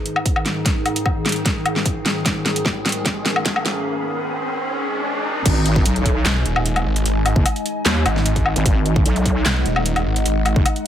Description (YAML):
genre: heavy wobble dubstep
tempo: 150 BPM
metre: 4/4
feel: half-time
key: G# minor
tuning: A4 = 444 Hz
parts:
  - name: evolving wavetable pad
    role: sustained chords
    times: 0.0-10.9 s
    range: G#2 to G#5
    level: -25 LUFS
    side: left 1 dB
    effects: chorus, built-in reverb, sidechain pumping
  - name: riser, swell and sub drop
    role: sound effects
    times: 0.0-7.1 s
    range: none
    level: -28 LUFS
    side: equal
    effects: none
  - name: dubstep drum kit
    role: drums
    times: 0.1-10.8 s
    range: crash cymbal, handclaps, hi-hat, snare drum, woodblock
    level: -21 LUFS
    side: left 1 dB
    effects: none
  - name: electronic kick drum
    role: drums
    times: 0.3-10.6 s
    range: none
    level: -20 LUFS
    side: equal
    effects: none
  - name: wobble bass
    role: bass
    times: 5.5-10.6 s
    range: F#1 to D#2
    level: -19 LUFS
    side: equal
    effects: chorus, overdrive
  - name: snarling distorted saw bass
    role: bass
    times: 6.3-10.5 s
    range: D#1 to B1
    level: -20 LUFS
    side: equal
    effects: distortion, overdrive
room: light reverb, digital ambience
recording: high-pass filter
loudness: -17 LUFS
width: side -10 dB against mid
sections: 0.0-5.5 A section; 5.5-10.9 B section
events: build-up 0.0-5.5; drum fill 0.0-3.9; riser 0.0-5.5; filter sweep on ambient pad 0.0-5.5; break 3.9-5.5; swell 4.7-5.5; drop 5.5-10.9; impact 5.5-7.1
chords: 0.0 G#5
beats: 0.26 | 0.66 1.06 1.46 1.86 | 2.26 2.66 3.06 3.46 | 3.86 4.26 4.66 5.06 | 5.46 5.86 6.26 6.66 | 7.06 7.46 7.86 8.26 | 8.66 9.06 9.46 9.86 | 10.26 10.66